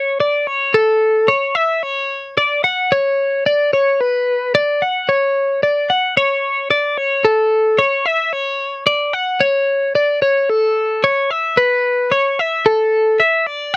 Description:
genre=rock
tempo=74 BPM (dotted quarters)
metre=6/8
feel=straight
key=unclear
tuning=A4 = 438 Hz
part: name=twelve-string electric guitar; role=solo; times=0.0-13.8 s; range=A4 to F#5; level=-13 LUFS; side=left 1 dB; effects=none
room=little or no reverb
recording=dry, close 1970s-style studio recording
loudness=-13 LUFS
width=side -22 dB against mid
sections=0.0-12.7 A section; 12.7-13.8 B section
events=none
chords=none

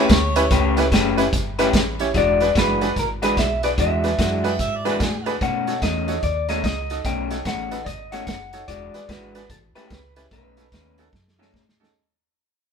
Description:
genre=electric blues shuffle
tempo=147 BPM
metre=4/4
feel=swing 63% on 8ths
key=unclear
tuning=A4 = 440 Hz
part: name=mellow harmonica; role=second line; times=0.0-0.9, 4.5-5.3 s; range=G#4 to G5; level=-28 LUFS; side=right 1 dB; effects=none
part: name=bright upright piano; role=accompaniment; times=0.0-11.9 s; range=C#4 to D#5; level=-25 LUFS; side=right 2 dB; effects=none
part: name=electric guitar through a small old amp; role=riff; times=0.0-11.6 s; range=B2 to B4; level=-25 LUFS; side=left 4 dB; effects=spring reverb
part: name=deep dub fingered electric bass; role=bass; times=0.1-11.9 s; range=E1 to B2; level=-27 LUFS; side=right 1 dB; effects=none
part: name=vintage drum kit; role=drums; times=0.1-11.9 s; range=hi-hat, kick drum, snare drum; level=-23 LUFS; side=right 1 dB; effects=none
part: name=electric guitar through a small old amp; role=melody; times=2.2-11.5 s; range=A4 to G5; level=-24 LUFS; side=left 2 dB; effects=none
room=moderate stone room reverb, RT60 1.1 s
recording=band playing live in one room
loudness=-18 LUFS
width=side -6 dB against mid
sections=0.0-12.0 A section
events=fade-out 0.2-12.0; drum fill 11.1-12.0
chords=0.0 A9; 2.1 E9; 5.4 B9; 8.7 E9; 9.5 A9; 10.3 B9

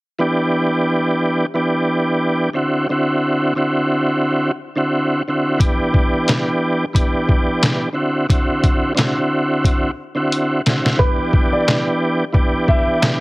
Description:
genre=hip hop, boom-bap hip-hop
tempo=89 BPM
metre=4/4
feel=swing 57% on 16ths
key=E minor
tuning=A4 = 443 Hz
part: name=tonewheel organ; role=accompaniment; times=0.2-13.2 s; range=D3 to G4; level=-17 LUFS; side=equal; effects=chorus vibrato, high-pass filter, low-pass filter, plate reverb
part: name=trip hop sampler-style drum kit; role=drums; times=5.6-13.2 s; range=handclaps, hi-hat, kick drum, snare drum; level=-16 LUFS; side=equal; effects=none
part: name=dark upright piano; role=melody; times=11.0-13.2 s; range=B4 to E5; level=-21 LUFS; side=equal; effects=high-pass filter, low-pass filter, plate reverb
room=moderate small room reverb, RT60 0.5 s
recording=heavily compressed radio sound, multiband compression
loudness=-15 LUFS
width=side -21 dB against mid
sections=0.2-11.0 A section; 11.0-13.2 B section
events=drum fill 9.6-11.0; hi-hats muted 11.0-13.2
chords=0.2 Em7; 2.6 D9; 5.6 Em7; 8.0 D9; 11.0 Em7

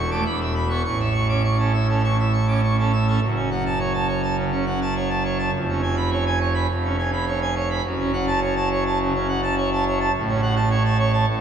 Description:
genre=classical, organ toccata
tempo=104 BPM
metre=4/4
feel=straight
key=A major, F# minor from 3.2 s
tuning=A4 = 438 Hz
part: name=pipe organ, full organ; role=solo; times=0.0-11.4 s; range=E1 to D6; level=-19 LUFS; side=right 2 dB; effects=none
room=wet concert hall reverb, RT60 1.8 s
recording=small room ambience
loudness=-19 LUFS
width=side -8 dB against mid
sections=0.0-3.2 A section; 3.2-11.4 B section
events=none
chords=0.3 E5; 0.9 A; 3.2 F#m; 5.5 C#7/E#; 7.8 F#m; 10.1 F#m/A

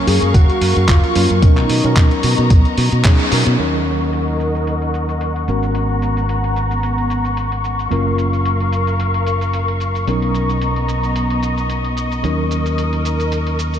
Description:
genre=nu-disco, nu disco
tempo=111 BPM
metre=4/4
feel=swing 55% on 16ths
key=Eb minor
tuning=A4 = 440 Hz
part: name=wide unison lead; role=melody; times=0.0-2.5 s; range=D#4 to Ab4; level=-22 LUFS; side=right 2 dB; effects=tape echo
part: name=tine electric piano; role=accompaniment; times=0.0-13.8 s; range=Gb3 to F5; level=-22 LUFS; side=equal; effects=overdrive, fast stereo tremolo, low-pass filter, tape echo
part: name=muted studio string section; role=sustained chords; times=0.0-13.8 s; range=B3 to Db6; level=-22 LUFS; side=left 2 dB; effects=sidechain pumping, low-pass filter
part: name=fingered electric bass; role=bass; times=0.1-13.8 s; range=Gb1 to B2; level=-18 LUFS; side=equal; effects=none
part: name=dusty soul sampler-style drum kit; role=drums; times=0.1-13.8 s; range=handclaps, hi-hat, shaker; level=-25 LUFS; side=right 1 dB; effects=low-pass filter on hats, low-pass filter on snare, low-pass filter on perc, low-pass filter on room
part: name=electronic kick drum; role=drums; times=0.3-3.2 s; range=none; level=-12 LUFS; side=equal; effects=none
room=moderate huge ambient reverb, RT60 3.8 s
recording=dreamy mix soaked in reverb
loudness=-14 LUFS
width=side -9 dB against mid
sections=0.0-3.6 A section; 3.6-13.8 B section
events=band accent 3.0; filter sweep on drum 3.6-13.8; filter sweep on string section 3.6-13.8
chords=0.0 Gbmaj7; 1.4 Bmaj9; 3.6 Ebm7; 5.5 Abm11; 7.9 Gbmaj7; 10.1 Bmaj9; 12.2 Ebm7

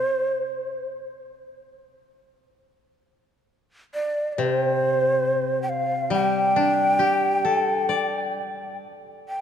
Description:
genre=japanese traditional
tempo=69 BPM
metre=4/4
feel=rubato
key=G suspended pentatonic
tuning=A4 = 440 Hz
part: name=breathy mellow shakuhachi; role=melody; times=0.0-9.4 s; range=C5 to G5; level=-23 LUFS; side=right 1 dB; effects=none
part: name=koto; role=accompaniment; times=4.4-9.4 s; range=C3 to D5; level=-25 LUFS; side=left 3 dB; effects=none
room=wet church reverb, RT60 3.6 s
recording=dark, warm production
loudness=-20 LUFS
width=side -8 dB against mid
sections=0.0-9.4 A section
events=none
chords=none

